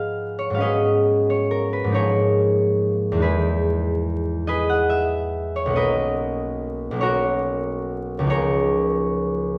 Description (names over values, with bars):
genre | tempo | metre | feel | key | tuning
classical, solo harp piece | 47 BPM (dotted quarters) | 6/8 | uneven beats, rubato | unclear | A4 = 441 Hz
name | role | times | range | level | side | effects
concert harp | solo | 0.0-9.6 s | B1 to F#5 | -22 LUFS | equal | none
room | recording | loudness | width
wet recital hall reverb, RT60 1.6 s | heard from further back in the room, vinyl crackle | -22 LUFS | mono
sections
0.0-9.6 A section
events
none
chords
0.0 G#m6; 0.6 B69/G#; 1.9 C#13/G#; 3.2 Emaj7; 5.8 Bmaj9; 8.3 C#69